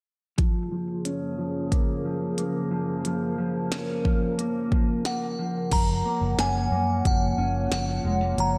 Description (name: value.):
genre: dream pop.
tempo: 90 BPM.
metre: 4/4.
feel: straight.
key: Gb major.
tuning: A4 = 442 Hz.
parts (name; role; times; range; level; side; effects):
warbly tape-like pad; sustained chords; 0.7-8.6 s; Gb2 to Gb5; -33 LUFS; equal; chorus, built-in reverb, low-pass filter.
mellow electric guitar; arpeggios; 0.4-8.6 s; F3 to Db4; -32 LUFS; equal; lush chorus, low-pass filter, tape echo, slapback echo.
minimal click drum kit; drums; 0.4-8.5 s; crash cymbal, hi-hat, kick drum, snare drum; -28 LUFS; equal; none.
glassy synth bell; melody; 5.1-8.6 s; Gb5 to Bb5; -31 LUFS; equal; chorus, tremolo, tape echo.
vintage muted fingered electric bass; bass; 5.7-8.6 s; F1 to Gb2; -29 LUFS; equal; none.
room: moderate lush hall reverb, RT60 2.2 s.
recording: big arena sound.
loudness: -26 LUFS.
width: mono.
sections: 0.4-5.7 A section; 5.7-8.6 B section.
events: filter sweep 0.4-5.7.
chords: 0.4 Gbmaj7.